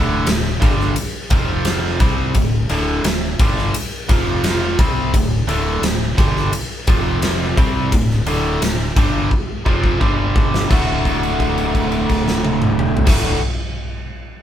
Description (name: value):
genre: classic rock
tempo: 86 BPM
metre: 4/4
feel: straight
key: unclear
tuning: A4 = 440 Hz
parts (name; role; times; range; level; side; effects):
- biting overdriven guitar; riff; 0.0-13.4 s; D2 to F#4; -19 LUFS; equal; none
- fuzz fingered electric bass; bass; 0.0-13.4 s; D1 to C2; -23 LUFS; equal; overdrive
- huge arena drum kit; drums; 0.3-13.2 s; crash cymbal, kick drum, ride cymbal, snare drum, toms; -18 LUFS; equal; none
room: moderate small room reverb, RT60 0.5 s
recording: band playing live in one room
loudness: -15 LUFS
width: side -10 dB against mid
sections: 0.0-10.7 A section; 10.7-13.5 B section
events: drum fill 9.3-10.7; held note 10.7-13.1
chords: 0.0 D5; 1.3 F5; 2.0 D5; 4.1 F5; 4.8 D5; 6.9 F5; 7.6 D5; 10.0 G5; 10.7 D